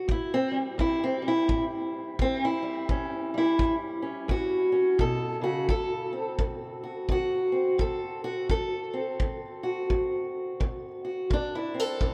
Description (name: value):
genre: acoustic country blues, solo or duo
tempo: 86 BPM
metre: 4/4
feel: swing 61% on 8ths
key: unclear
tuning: A4 = 440 Hz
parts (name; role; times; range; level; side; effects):
- fingerpicked steel-string acoustic guitar; melody; 0.0-12.1 s; A2 to A4; -29 LUFS; equal; none
- kick drum; drums; 0.1-12.1 s; none; -32 LUFS; equal; none
room: wet cathedral reverb, RT60 5.8 s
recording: in a vast, echoing space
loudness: -28 LUFS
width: mono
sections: 0.0-12.1 A section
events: steel-string acoustic guitar solo 0.0-12.1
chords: 0.1 A7; 5.7 D7